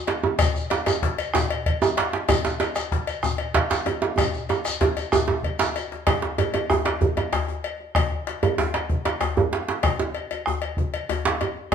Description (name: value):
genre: west african traditional, West African drum ensemble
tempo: 127 BPM (dotted quarters)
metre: 12/8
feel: straight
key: none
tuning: none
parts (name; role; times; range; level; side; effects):
- cowbell; percussion; 0.1-11.7 s; none; -29 LUFS; left 7 dB; none
- djembe; percussion; 0.1-11.6 s; none; -23 LUFS; right 5 dB; none
- bombo; percussion; 0.4-11.7 s; none; -26 LUFS; equal; none
- djembe; percussion; 0.4-11.7 s; none; -30 LUFS; left 5 dB; none
- shekere; percussion; 0.4-5.8 s; none; -34 LUFS; left 3 dB; none
room: wet large studio reverb, RT60 1.0 s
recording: band playing live in one room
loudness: -21 LUFS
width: side -7 dB against mid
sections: 0.0-6.1 A section; 6.1-11.7 B section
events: drum fill 4.2-6.1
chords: none